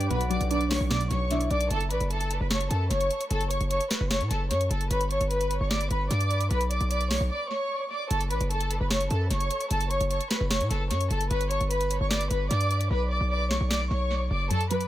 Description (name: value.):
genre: hip hop, trap.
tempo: 150 BPM.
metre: 4/4.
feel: half-time.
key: F# phrygian.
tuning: A4 = 438 Hz.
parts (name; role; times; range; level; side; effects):
dark symphonic violin section; melody; 0.0-14.9 s; A4 to D6; -29 LUFS; equal; tape echo.
soft octave-layered synth lead; second line; 0.0-1.7 s; D5 to F#5; -35 LUFS; left 3 dB; chorus, tremolo, tape echo.
warbly dusty pluck; accompaniment; 0.0-1.7, 14.5-14.9 s; F#2 to D4; -30 LUFS; right 1 dB; chorus, tape echo.
airy breathy pad; sustained chords; 0.0-1.7 s; F#3 to B4; -38 LUFS; right 4 dB; none.
hard-hitting 808-style bass; bass; 0.0-14.5 s; F#1 to A2; -27 LUFS; equal; none.
trap drum kit; drums; 0.0-14.9 s; hi-hat, snare drum; -32 LUFS; equal; tape echo.
room: little or no reverb.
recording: echo-heavy mix.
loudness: -24 LUFS.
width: side -14 dB against mid.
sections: 0.0-1.7 A section; 1.7-14.9 B section.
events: break 7.3-8.1; hi-hats muted 12.9-14.5; kick muted 14.5-14.9.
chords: 0.1 Bm; 1.7 F#m; 4.9 G; 6.5 Bm; 8.1 F#m; 11.3 G; 12.9 Bm.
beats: | 0.11 0.51 0.91 1.31 | 1.71 2.11 2.51 2.91 | 3.31 3.71 4.11 4.51 | 4.91 5.31 5.71 6.11 | 6.51 6.91 7.31 7.71 | 8.11 8.51 8.91 9.31 | 9.71 10.11 10.51 10.91 | 11.31 11.71 12.11 12.51 | 12.91 13.31 13.71 14.11 | 14.51.